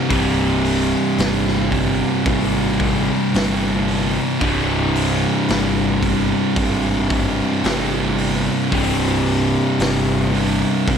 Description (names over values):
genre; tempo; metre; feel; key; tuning
stoner and doom metal; 56 BPM; 4/4; straight; unclear; A4 = 440 Hz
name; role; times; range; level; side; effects
crunchy overdriven guitar; riff; 0.0-11.0 s; C2 to C3; -23 LUFS; equal; none
thick fuzz guitar; riff; 0.0-11.0 s; C2 to C3; -22 LUFS; left 8 dB; distortion
thick fuzz guitar; riff; 0.0-11.0 s; C2 to C3; -21 LUFS; right 8 dB; distortion
fuzz picked electric bass; bass; 0.1-11.0 s; C1 to Ab1; -24 LUFS; equal; overdrive, tube saturation
raw garage drum kit; drums; 0.1-11.0 s; hi-hat, kick drum, snare drum; -25 LUFS; equal; none
room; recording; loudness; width
light reverb, small room ambience; none; -16 LUFS; side -7 dB against mid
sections
0.0-11.0 A section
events
none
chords
0.0 C5